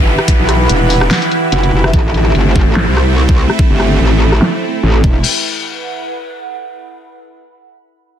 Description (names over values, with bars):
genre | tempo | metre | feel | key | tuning
heavy wobble dubstep | 145 BPM | 4/4 | swing 54% on 16ths, half-time | E minor | A4 = 439 Hz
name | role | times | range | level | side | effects
supersaw pad | sustained chords | 0.0-5.2 s | E3 to B4 | -17 LUFS | equal | phaser, sidechain pumping
metallic wobble bass | bass | 0.0-5.2 s | E1 to C2 | -12 LUFS | equal | distortion, chorus, overdrive
downlifter | sound effects | 0.0-1.9 s | none | -25 LUFS | left 1 dB | none
airy breathy pad | texture | 0.0-6.9 s | E4 to B5 | -23 LUFS | right 2 dB | chorus, phaser, sidechain pumping
dubstep drum kit | drums | 0.2-5.1 s | crash cymbal, hi-hat, rim click, snare drum | -17 LUFS | left 1 dB | overdrive, low-pass filter on hats, small room ambience, low-pass filter on cymbals, low-pass filter on snare
electronic kick drum | drums | 0.3-5.1 s | none | -12 LUFS | equal | overdrive, small room ambience
dark brass ensemble | stabs | 1.8-1.9 s | E4 to E5 | -26 LUFS | left 3 dB | none
room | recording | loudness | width
light reverb | dense, heavily limited modern master | -10 LUFS | side -10 dB against mid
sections
0.0-5.2 A section; 5.2-6.9 B section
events
fade-out on analog synth pad 0.0-5.2; filter sweep on drum 0.0-5.2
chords
0.0 Em; 1.9 Am; 5.0 Em; 5.2 E5